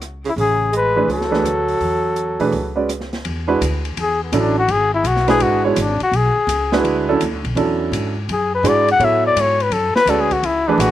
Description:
modal jazz; 167 BPM; 4/4; swing 66% on 8ths; E mixolydian; A4 = 440 Hz
upright bass; bass; 0.0-10.9 s; G#1 to B2; -23 LUFS; equal
open jazz drum kit; drums; 0.0-10.9 s; hi-hat, kick drum, ride cymbal, rim click, snare drum; -28 LUFS; left 2 dB
growling tenor saxophone; second line; 0.2-2.9 s; C#3 to G#3; -23 LUFS; right 5 dB
mellow trumpet; melody; 0.3-10.9 s; B3 to F#5; -17 LUFS; left 3 dB; slapback echo
warm concert grand piano; accompaniment; 1.0-10.9 s; E3 to D5; -18 LUFS; right 4 dB; slapback echo
little or no reverb; recorded outdoors, with no room sound; -15 LUFS; side -12 dB against mid
0.0-3.3 A section; 3.3-10.9 B section
trumpet solo 3.3-10.9
0.0 F#madd9; 3.3 E9; 9.0 F#madd9
0.01 | 0.37 0.73 1.09 1.45 | 1.81 2.17 2.53 2.89 | 3.25 3.61 3.97 4.33 | 4.69 5.05 5.41 5.77 | 6.13 6.49 6.85 7.21 | 7.57 7.93 8.29 8.64 | 9.01 9.36 9.72 10.08 | 10.44 10.80

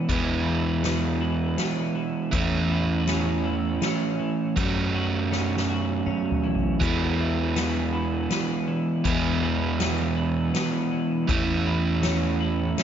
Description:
post-rock; 80 BPM; 3/4; straight; E major; A4 = 440 Hz
twelve-string electric guitar; arpeggios; 0.0-12.8 s; E2 to F#4; -30 LUFS; left 7 dB; wide subtle chorus, tape echo
crunchy overdriven guitar; riff; 0.0-12.8 s; E3 to F#4; -25 LUFS; right 5 dB
picked electric bass; bass; 0.1-12.7 s; E2 to F#2; -28 LUFS; left 2 dB
soft-mallet drum kit; drums; 0.1-12.8 s; crash cymbal, hi-hat, kick drum, snare drum, toms; -31 LUFS; left 2 dB
light reverb, studio reverb; nothing above 7.5 kHz; -22 LUFS; side -9 dB against mid
0.0-12.8 A section
drum fill 5.3-6.8
0.0 E; 2.3 A/E; 4.6 F#m7; 6.8 E; 11.3 A/E
| 0.09 0.84 1.59 | 2.33 3.08 3.83 | 4.57 5.32 6.07 | 6.81 7.56 8.31 | 9.05 9.80 10.54 | 11.29 12.04 12.78

